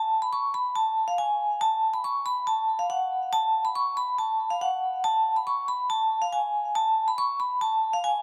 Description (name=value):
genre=hip hop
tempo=140 BPM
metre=4/4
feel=half-time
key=unclear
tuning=A4 = 442 Hz
part: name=vibraphone with medium hard mallets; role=solo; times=0.0-8.2 s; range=E#5 to C#6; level=-26 LUFS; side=equal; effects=tape echo
room=moderate spring reverb, RT60 2.7 s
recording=echo-heavy mix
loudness=-26 LUFS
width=mono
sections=0.0-8.2 A section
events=none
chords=none